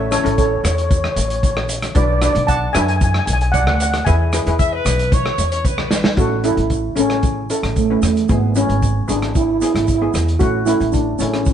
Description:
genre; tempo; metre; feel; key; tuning
calypso; 114 BPM; 4/4; straight; A major; A4 = 440 Hz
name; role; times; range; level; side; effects
steel pan; melody; 0.0-11.5 s; A3 to A5; -19 LUFS; right 2 dB; none
upright bass; bass; 0.0-11.5 s; G#1 to F#2; -20 LUFS; equal; none
steel pan; accompaniment; 0.1-11.5 s; A3 to B4; -24 LUFS; left 2 dB; none
vintage drum kit; drums; 0.1-11.5 s; hi-hat, kick drum, rim click, snare drum; -20 LUFS; equal; none
tube shaker; percussion; 0.1-11.5 s; none; -32 LUFS; right 6 dB; none
warm horn section; second line; 4.6-6.2 s; B4 to E5; -22 LUFS; left 1 dB; none
room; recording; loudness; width
moderate plate reverb, RT60 1.6 s; heard from further back in the room, nothing above 10.5 kHz; -15 LUFS; side -9 dB against mid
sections
0.0-6.2 A section; 6.2-11.5 B section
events
drum fill 5.9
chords
0.0 A; 2.0 Bm; 4.1 E; 6.2 A; 8.3 E/G#; 10.4 A

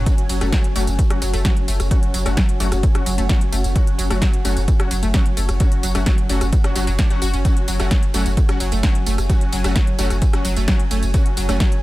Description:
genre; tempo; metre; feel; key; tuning
driving peak-time techno; 130 BPM; 4/4; straight; F# minor; A4 = 440 Hz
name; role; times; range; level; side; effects
analog pluck; riff; 0.0-11.7 s; F#3 to F#4; -28 LUFS; equal; chorus, sidechain pumping, digital delay
saturated sub bass; bass; 0.0-11.6 s; F#1; -21 LUFS; equal; overdrive, sidechain pumping, low-pass filter
granular cloud pad; texture; 0.0-11.8 s; C#4 to G#5; -30 LUFS; right 1 dB; built-in reverb, sidechain pumping
rave stab; stabs; 0.1-11.6 s; F#3 to F#4; -28 LUFS; left 2 dB; chorus, built-in reverb, sidechain pumping, dub echo
electronic kick drum; drums; 0.1-11.7 s; none; -18 LUFS; equal; none
techno drum kit; drums; 0.1-11.8 s; hi-hat, ride cymbal, rim click, snare drum, tambourine; -26 LUFS; equal; sidechain pumping on hats, sidechain pumping on cymbals, sidechain pumping on perc, sidechain pumping on toms
room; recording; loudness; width
digital ambience; none; -16 LUFS; side -17 dB against mid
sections
0.0-11.8 A section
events
none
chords
0.0 F#5

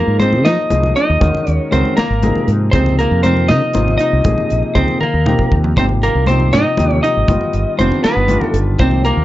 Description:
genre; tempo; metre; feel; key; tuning
electric jazz fusion; 79 BPM (dotted quarters); 6/8; straight; unclear; A4 = 440 Hz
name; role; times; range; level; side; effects
lightly driven lead guitar; melody; 0.0-9.2 s; Bb4 to Eb5; -18 LUFS; equal; none
archtop guitar, miked and amplified; second line; 0.0-9.2 s; Bb3 to Eb4; -21 LUFS; right 3 dB; none
warm baby grand piano; accompaniment; 0.0-9.2 s; C3 to Eb5; -20 LUFS; left 2 dB; none
mellow fretless electric bass; bass; 0.1-9.2 s; F1 to F3; -16 LUFS; equal; none
modern studio drum kit; drums; 0.2-9.2 s; hi-hat, kick drum, snare drum, toms; -19 LUFS; equal; none
congas; percussion; 0.2-9.2 s; none; -23 LUFS; left 2 dB; none
room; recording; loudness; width
light reverb; dark, warm production, nothing above 7.6 kHz; -12 LUFS; side -15 dB against mid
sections
0.0-9.2 A section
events
drum fill 5.0-5.8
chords
0.0 Fm7; 1.2 Ebm7; 2.0 Abadd9; 2.7 Dbmaj9; 4.2 Bbm9; 5.0 Eb; 5.8 Abmaj9; 7.3 G7b13

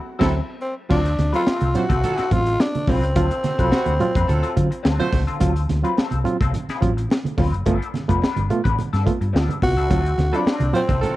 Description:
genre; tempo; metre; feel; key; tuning
funk; 107 BPM; 4/4; straight; D mixolydian; A4 = 440 Hz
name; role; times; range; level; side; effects
growling tenor saxophone; melody; 0.0-5.1, 9.6-11.2 s; C4 to F#4; -23 LUFS; equal; none
clear horn section; second line; 0.2-5.2, 10.3-11.2 s; C3 to C5; -29 LUFS; right 4 dB; none
electric guitar at the edge of break-up; accompaniment; 0.2-11.1 s; F3 to B4; -30 LUFS; left 6 dB; wah, spring reverb
barky reed electric piano; stabs; 0.2-11.1 s; G2 to E#4; -25 LUFS; right 4 dB; fast tremolo
hollow-body short-scale fingered electric bass; bass; 0.2-11.0 s; F1 to D3; -22 LUFS; equal; none
crunchy breakbeat drum kit; drums; 0.2-11.2 s; crash cymbal, hi-hat, kick drum, snare drum; -23 LUFS; equal; none
congas; percussion; 1.1-11.2 s; none; -28 LUFS; right 4 dB; none
room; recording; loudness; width
small room ambience; dry, close 1970s-style studio recording; -18 LUFS; side -16 dB against mid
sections
0.9-11.2 A section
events
band accent 0.0-0.9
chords
0.0 D9; 0.9 D7#9; 7.7 G9; 9.9 D7#9

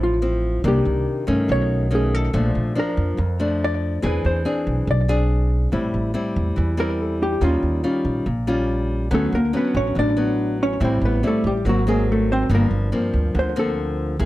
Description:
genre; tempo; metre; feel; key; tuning
bossa nova; 142 BPM; 4/4; straight; D minor; A4 = 440 Hz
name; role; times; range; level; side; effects
hollow-body jazz guitar; melody; 0.0-14.2 s; F#3 to D5; -23 LUFS; equal; slapback echo
nylon-string guitar; accompaniment; 0.0-14.3 s; F2 to G#4; -23 LUFS; left 1 dB; none
upright bass; bass; 0.0-14.3 s; G1 to G2; -22 LUFS; right 1 dB; none
room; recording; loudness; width
little or no reverb; dry, close 1970s-style studio recording; -18 LUFS; side -16 dB against mid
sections
0.0-14.3 A section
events
hollow-body jazz guitar solo 0.0-14.3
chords
0.0 Dm9 (rootless); 0.6 Cm9; 1.5 B9; 2.3 Bbmaj7; 4.0 E7b13; 5.7 Am7; 7.4 Eb9; 9.1 D6; 10.8 Am7; 11.7 G#9; 12.5 Gm11

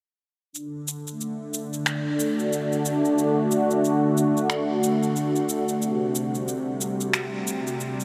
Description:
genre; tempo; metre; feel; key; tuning
organic downtempo; 91 BPM; 4/4; swing 59% on 16ths; unclear; A4 = 442 Hz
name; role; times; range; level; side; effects
warm analog pad; sustained chords; 0.5-8.0 s; C3 to F#4; -25 LUFS; equal; chorus
electronic shaker and finger snaps; drums; 0.6-8.0 s; none; -33 LUFS; equal; overdrive
room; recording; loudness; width
wet huge ambient reverb, RT60 8.4 s; dreamy mix soaked in reverb; -25 LUFS; mono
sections
0.5-8.0 A section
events
none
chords
0.5 D; 5.8 C5

